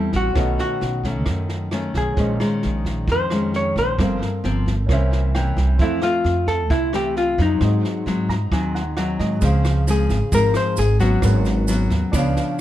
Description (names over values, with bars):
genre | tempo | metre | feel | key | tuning
bossa nova | 132 BPM | 4/4 | straight | Db major from 9.4 s | A4 = 440 Hz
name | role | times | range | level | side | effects
vintage hollow-body jazz guitar | melody | 0.0-11.9 s | Eb4 to Db5 | -22 LUFS | left 1 dB | plate reverb
nylon-string guitar | accompaniment | 0.0-12.6 s | F2 to E4 | -24 LUFS | left 2 dB | none
warm concert grand piano | accompaniment | 0.0-12.6 s | C4 to Bb5 | -31 LUFS | right 4 dB | none
upright bass | bass | 0.0-12.3 s | G1 to Ab2 | -21 LUFS | right 1 dB | none
compact cocktail drum kit | drums | 0.1-12.4 s | kick drum, rim click, snare drum | -26 LUFS | right 1 dB | none
tube shaker | percussion | 9.4-12.6 s | none | -36 LUFS | right 6 dB | none
room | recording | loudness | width
light reverb | dark, warm production | -17 LUFS | side -13 dB against mid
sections
0.0-9.4 A section; 9.4-12.6 B section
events
grand piano fill 5.1-5.8, 8.1-9.4, 12.1-12.6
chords
0.4 B9; 2.2 Bbm11; 4.0 Gm11; 4.9 C7b9; 5.8 Fmaj7; 7.6 Ab7; 9.4 Dbmaj7; 11.2 Abm11